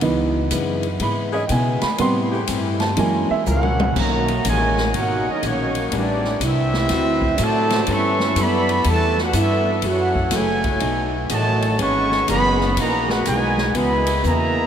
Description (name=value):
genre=jazz, big band swing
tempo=122 BPM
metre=4/4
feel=swing 66% on 8ths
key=unclear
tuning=A4 = 439 Hz
part: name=picked plugged-in steel-string acoustic guitar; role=accompaniment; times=0.0-14.6 s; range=A2 to A#4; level=-27 LUFS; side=left 5 dB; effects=none
part: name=warm upright piano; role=accompaniment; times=0.0-3.9 s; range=C3 to C6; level=-23 LUFS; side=right 3 dB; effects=none
part: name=upright bass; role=bass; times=0.0-14.7 s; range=F#1 to B2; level=-24 LUFS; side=equal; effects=none
part: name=swinging big-band drum kit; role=drums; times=0.0-14.4 s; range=crash cymbal, hi-hat, kick drum, ride cymbal, snare drum, toms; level=-27 LUFS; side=left 2 dB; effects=none
part: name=bright saxophone section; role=sustained chords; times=1.3-2.9 s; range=E3 to G#4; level=-34 LUFS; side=left 2 dB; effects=none
part: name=clear trumpet section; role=melody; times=3.5-14.7 s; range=A#3 to C#6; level=-21 LUFS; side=right 1 dB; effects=none
part: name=warm trombone section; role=second line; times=3.5-14.7 s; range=B2 to F#4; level=-23 LUFS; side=right 2 dB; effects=none
room=wet huge ambient reverb, RT60 7.6 s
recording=in a vast, echoing space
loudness=-17 LUFS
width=side -8 dB against mid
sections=0.0-4.0 A section; 4.0-14.7 B section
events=upright piano solo 0.0-4.0; drum fill 3.5-4.0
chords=0.0 C#m7; 2.0 Am7; 3.0 F#7; 4.0 Bmaj9; 5.9 Am11; 6.9 D7; 7.9 G69; 9.8 F#m9; 10.8 B13; 11.8 Emaj9#11; 13.8 C#m11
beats=| 0.03 0.52 1.01 1.50 | 2.00 2.49 2.98 3.47 | 3.96 4.45 4.94 5.43 | 5.92 6.41 6.90 7.39 | 7.88 8.37 8.86 9.35 | 9.84 10.32 10.81 11.30 | 11.79 12.28 12.77 13.26 | 13.75 14.24